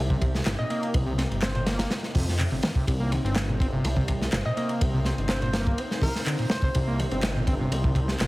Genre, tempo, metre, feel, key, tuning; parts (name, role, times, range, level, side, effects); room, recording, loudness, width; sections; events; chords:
breakbeat, breaks; 124 BPM; 4/4; straight; C minor; A4 = 442 Hz
phased analog pad; sustained chords; 0.0-8.3 s; C3 to C5; -35 LUFS; left 1 dB; phaser, chorus, sidechain pumping
detuned saw bass; bass; 0.0-8.3 s; G1 to F2; -28 LUFS; equal
overdriven acid bass; riff; 0.1-8.2 s; Bb2 to C4; -30 LUFS; equal; distortion, dub echo
crunchy breakbeat drum kit; drums; 0.1-8.3 s; hi-hat, kick drum, ride cymbal, snare drum; -27 LUFS; equal
electronic handclaps; drums; 0.5-8.3 s; -36 LUFS; equal
hollow square pluck; melody; 0.6-6.7 s; Bb4 to Eb5; -36 LUFS; equal; chorus, small speaker sound, dub echo
light reverb, studio reverb; heavily compressed radio sound, multiband compression; -23 LUFS; side -20 dB against mid
0.0-8.3 A section
0.0 Cm